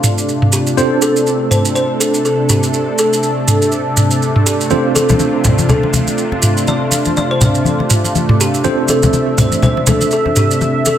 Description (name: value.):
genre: afro house.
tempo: 122 BPM.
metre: 4/4.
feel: swing 57% on 16ths.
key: D minor.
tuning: A4 = 438 Hz.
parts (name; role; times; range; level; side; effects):
warm analog pad; sustained chords; 0.0-11.0 s; C3 to E5; -16 LUFS; equal; chorus, vintage 12-bit sampler grit.
tine electric piano; stabs; 0.0-11.0 s; C4 to C5; -20 LUFS; right 3 dB; overdrive, fast stereo tremolo, dub echo.
electronic toms; drums; 0.0-10.5 s; none; -15 LUFS; equal; studio reverb.
maracas; percussion; 0.0-11.0 s; none; -19 LUFS; right 4 dB; none.
kalimba; melody; 0.5-11.0 s; G4 to D5; -19 LUFS; left 1 dB; none.
congas; percussion; 4.7-11.0 s; none; -16 LUFS; left 2 dB; none.
room: moderate recital hall reverb, RT60 1.4 s, studio ambience.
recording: none.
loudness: -11 LUFS.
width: side -10 dB against mid.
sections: 0.0-11.0 A section.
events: none.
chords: 0.0 Dm7.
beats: 0.28 | 0.77 1.26 1.76 2.25 | 2.74 3.23 3.72 4.22 | 4.71 5.20 5.69 6.18 | 6.67 7.17 7.66 8.15 | 8.64 9.13 9.63 10.12 | 10.61.